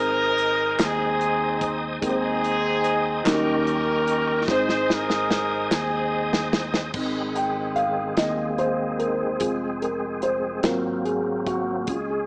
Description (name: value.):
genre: slow gospel.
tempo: 49 BPM (dotted quarters).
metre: 6/8.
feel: straight.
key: Ab major.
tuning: A4 = 439 Hz.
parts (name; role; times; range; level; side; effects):
warm horn section; melody; 0.0-6.9 s; C4 to C5; -26 LUFS; equal; slapback echo.
dark upright piano; accompaniment; 0.0-12.3 s; Ab2 to G5; -29 LUFS; equal; none.
bright tonewheel organ; sustained chords; 0.0-12.3 s; Eb3 to Eb6; -32 LUFS; equal; fast rotary speaker, chorus vibrato.
fingered electric bass; bass; 0.0-12.3 s; F1 to Eb2; -35 LUFS; equal; none.
warm soul drum kit; drums; 0.4-12.1 s; crash cymbal, hi-hat, kick drum, snare drum; -29 LUFS; equal; none.
group handclap; percussion; 0.8-6.1 s; none; -37 LUFS; equal; none.
room: moderate large studio reverb, RT60 1.1 s.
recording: small speaker sound.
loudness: -24 LUFS.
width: mono.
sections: 0.0-6.9 A section; 6.9-12.3 B section.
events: drum fill 4.5-6.9; upright piano solo 6.9-12.3.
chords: 0.0 Ab; 2.0 Ab/Eb; 3.2 Eb7; 4.5 Ab; 9.4 Fm; 10.6 Ab13.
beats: 0.79 | 2.02 3.25 | 4.48 5.71 | 6.94 8.18 | 9.41 10.64 | 11.88.